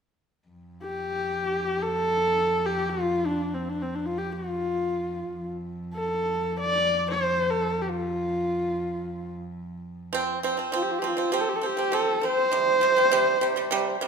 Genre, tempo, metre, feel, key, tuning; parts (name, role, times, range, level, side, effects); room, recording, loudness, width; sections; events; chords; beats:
mongolian traditional; free time; F gong mode; A4 = 439 Hz
rich cello; drone; 0.5-10.2 s; F2; -34 LUFS; right 1 dB
rich horsehead fiddle; melody; 0.8-14.0 s; C4 to D5; -24 LUFS; equal
pipa; arpeggios; 10.1-14.1 s; C3 to C4; -26 LUFS; right 4 dB
wet recital hall reverb, RT60 1.5 s; minimal, uncompressed stereo recording; -23 LUFS; side -6 dB against mid
0.5-10.1 A section; 10.1-14.1 B section
0.5 N.C.; 10.1 F5; 12.5 C5
free time